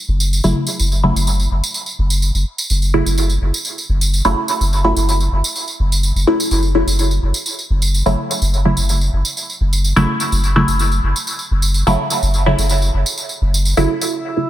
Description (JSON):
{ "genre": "dub techno", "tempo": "126 BPM", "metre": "4/4", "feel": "straight", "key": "F# minor", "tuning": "A4 = 440 Hz", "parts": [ { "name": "pure sine sub bass", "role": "bass", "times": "0.1-13.9 s", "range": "F#1", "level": "-16 LUFS", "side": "equal", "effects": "none" }, { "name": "tambourine", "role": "percussion", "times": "0.2-14.1 s", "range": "none", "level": "-22 LUFS", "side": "right 2 dB", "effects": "none" }, { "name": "filtered dub chord stab", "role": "stabs", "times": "0.4-14.5 s", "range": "C#3 to E4", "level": "-18 LUFS", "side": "equal", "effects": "phaser, dub echo" }, { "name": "drifting glass-harmonics texture", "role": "texture", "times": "14.2-14.5 s", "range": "E4", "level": "-24 LUFS", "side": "right 1 dB", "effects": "chorus, built-in reverb" } ], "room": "light reverb", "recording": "dense, heavily limited modern master", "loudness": "-14 LUFS", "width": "side -13 dB against mid", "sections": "0.0-14.1 A section", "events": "none", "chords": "0.0 F#m7" }